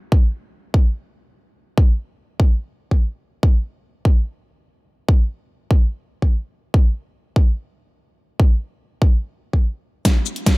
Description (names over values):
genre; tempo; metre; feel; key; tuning
dubstep; 145 BPM; 4/4; half-time; none; none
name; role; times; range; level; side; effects
electronic kick drum; drums; 0.1-10.5 s; none; -14 LUFS; equal; none
dubstep drum kit; drums; 10.1-10.5 s; hi-hat, shaker, snare drum; -20 LUFS; equal; none
room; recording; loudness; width
little or no reverb; none; -17 LUFS; side -25 dB against mid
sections
0.0-10.1 A section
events
drum fill 10.1-10.6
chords
none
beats
| 0.12 0.53 0.95 1.36 | 1.77 2.19 2.60 3.02 | 3.43 3.84 4.26 4.67 | 5.08 5.50 5.91 6.33 | 6.74 7.15 7.57 7.98 | 8.40 8.81 9.22 9.64 | 10.05 10.46